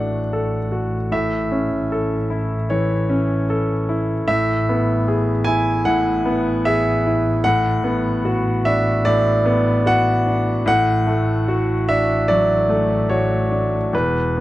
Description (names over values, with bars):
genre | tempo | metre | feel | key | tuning
neoclassical piano and strings | 75 BPM | 4/4 | rubato | unclear | A4 = 438 Hz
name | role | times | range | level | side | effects
clear grand piano | accompaniment | 0.0-14.4 s | E2 to G#5 | -18 LUFS | equal | none
dark double bass | bass | 0.0-14.4 s | E1 to A1 | -23 LUFS | equal | none
room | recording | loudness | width
small room ambience | dry, close 1970s-style studio recording | -16 LUFS | side -16 dB against mid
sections
0.0-14.4 A section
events
none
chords
0.0 D/A; 1.1 A; 4.3 E/A; 7.4 Bm/A; 10.7 D/A